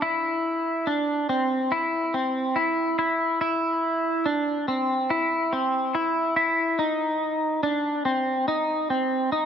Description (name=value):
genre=dream pop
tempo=71 BPM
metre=4/4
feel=straight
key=unclear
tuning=A4 = 440 Hz
part: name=clean electric guitar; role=solo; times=0.0-9.5 s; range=C4 to E4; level=-22 LUFS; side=equal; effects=analog chorus, tape echo
room=wet recital hall reverb, RT60 1.8 s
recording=none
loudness=-22 LUFS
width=side -8 dB against mid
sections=0.0-9.5 A section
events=none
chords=none